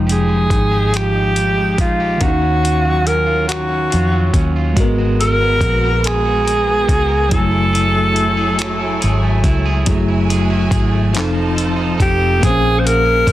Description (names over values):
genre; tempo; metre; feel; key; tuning
slow six-eight R&B; 47 BPM (dotted quarters); 6/8; straight; unclear; A4 = 437 Hz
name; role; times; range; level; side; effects
electric guitar at the edge of break-up; second line; 0.0-13.3 s; Eb3 to C5; -23 LUFS; right 4 dB; none
tine electric piano; accompaniment; 0.0-13.3 s; Eb3 to Ab5; -21 LUFS; left 1 dB; overdrive, fast stereo tremolo
vintage muted fingered electric bass; bass; 0.0-13.3 s; F1 to F2; -18 LUFS; equal; none
breathy tenor saxophone; melody; 0.1-13.3 s; F4 to C5; -17 LUFS; equal; slapback echo
dusty soul sampler-style drum kit; drums; 0.1-13.3 s; finger snaps, handclaps, hi-hat, kick drum; -18 LUFS; equal; soft clipping on snare
warm studio string section; sustained chords; 4.8-12.4 s; Gb3 to A5; -27 LUFS; right 1 dB; none
room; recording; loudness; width
little or no reverb; dense, heavily limited modern master; -13 LUFS; side -14 dB against mid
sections
0.0-9.9 A section; 9.9-12.4 B section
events
none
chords
0.0 Fm9; 2.2 Ebm9; 4.8 Abm9; 7.3 Gbm9; 11.1 F7; 12.4 Bbm9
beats
0.94 | 2.21 3.49 | 4.77 6.04 | 7.32 8.60 | 9.87 11.15 | 12.43